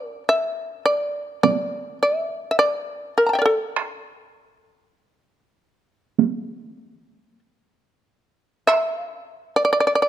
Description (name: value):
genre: japanese traditional, Japanese chamber music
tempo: 47-52 BPM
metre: 4/4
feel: rubato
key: A in sen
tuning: A4 = 440 Hz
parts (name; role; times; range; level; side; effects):
- shamisen; melody; 0.0-10.1 s; A4 to Bb5; -19 LUFS; equal; none
- taiko ensemble; percussion; 1.4-9.0 s; none; -21 LUFS; right 9 dB; none
room: moderate recital hall reverb, RT60 1.8 s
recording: close, detailed microphones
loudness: -20 LUFS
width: side -10 dB against mid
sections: 0.0-8.7 A section; 8.7-10.1 B section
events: none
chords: none